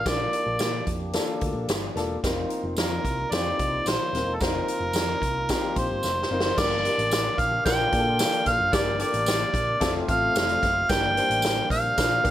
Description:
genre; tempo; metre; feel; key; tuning
uptempo 1960s-style soul; 111 BPM; 4/4; straight; Bb major; A4 = 441 Hz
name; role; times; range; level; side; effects
mellow harmonica; melody; 0.0-12.3 s; A4 to G5; -25 LUFS; equal; none
warm upright piano; accompaniment; 0.0-12.3 s; A3 to C5; -30 LUFS; left 2 dB; none
percussive tonewheel organ; sustained chords; 0.0-12.3 s; F3 to G4; -37 LUFS; right 1 dB; none
hollow-body short-scale picked electric bass; bass; 0.0-12.3 s; Eb1 to Bb2; -32 LUFS; equal; none
swinging big-band drum kit; drums; 0.1-12.3 s; crash cymbal, hi-hat, kick drum, snare drum; -28 LUFS; equal; none
tambourine; percussion; 0.1-12.1 s; none; -36 LUFS; right 4 dB; none
glockenspiel with rubber mallets; second line; 5.8-12.3 s; C6 to G6; -34 LUFS; right 3 dB; none
room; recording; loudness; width
light reverb; none; -22 LUFS; side -12 dB against mid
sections
0.0-6.6 A section; 6.6-12.3 B section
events
drum fill 6.0-6.6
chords
0.0 Bbmaj7; 2.2 F7sus4; 6.6 Gm; 7.7 Bb; 8.7 Gm; 9.8 F; 10.9 Gm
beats
| 0.06 0.60 1.15 1.69 | 2.24 2.78 3.32 3.87 | 4.41 4.95 5.49 6.04 | 6.58 7.12 7.66 8.20 | 8.74 9.28 9.82 10.36 | 10.90 11.44 11.98

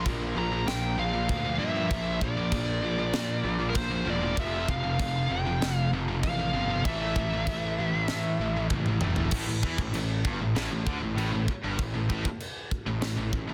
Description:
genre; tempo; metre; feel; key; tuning
heavy metal; 97 BPM; 4/4; straight; A phrygian; A4 = 438 Hz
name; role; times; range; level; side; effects
bluesy overdriven lead guitar; melody; 0.0-8.7 s; Bb4 to Bb5; -34 LUFS; equal; distortion
cranked stack guitar; riff; 0.0-13.5 s; F2 to Bb3; -40 LUFS; equal; none
heavy high-gain guitar; riff; 0.0-13.5 s; F2 to A3; -37 LUFS; equal; distortion
scooped high-gain guitar; riff; 0.0-13.5 s; F2 to A3; -36 LUFS; equal; distortion
fuzz picked electric bass; bass; 0.0-13.5 s; E1 to Bb2; -34 LUFS; equal; overdrive
tight metal drum kit; drums; 0.1-13.5 s; china cymbal, crash cymbal, kick drum, snare drum, toms; -35 LUFS; equal; none
room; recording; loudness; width
small room ambience; dense, heavily limited modern master; -28 LUFS; mono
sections
0.0-9.3 A section; 9.3-13.5 B section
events
drum fill 8.7-9.3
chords
0.0 Bb; 4.4 F; 6.9 A5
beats
0.06 0.68 1.30 | 1.92 2.54 3.15 3.77 | 4.39 5.01 5.62 6.24 | 6.86 7.47 8.09 8.71 | 9.32 9.94 10.55 11.17 | 11.79 12.40 13.02

